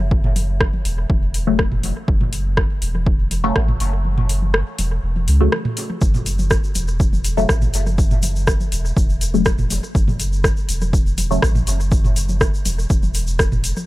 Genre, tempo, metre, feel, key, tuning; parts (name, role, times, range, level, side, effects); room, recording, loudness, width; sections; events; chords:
dub techno; 122 BPM; 4/4; straight; F# minor; A4 = 440 Hz
pure sine sub bass; bass; 0.0-13.7 s; E1 to C#2; -20 LUFS; equal; sidechain pumping
electronic toms; percussion; 0.0-13.9 s; -28 LUFS; right 1 dB; sidechain pumping on toms, dub echo
electronic kick drum; drums; 0.1-13.5 s; -19 LUFS; equal; overdrive
deep house drum kit; drums; 0.4-13.7 s; hi-hat, rim click; -23 LUFS; equal; overdrive, dub echo
filtered dub chord stab; stabs; 1.5-11.5 s; C#3 to A3; -25 LUFS; left 2 dB; phaser, sidechain pumping, dub echo
tube shaker; percussion; 6.0-13.9 s; -30 LUFS; left 2 dB
little or no reverb; -16 LUFS; side -17 dB against mid
0.0-13.9 A section
kick drops out 4.0-6.0
0.0 F#m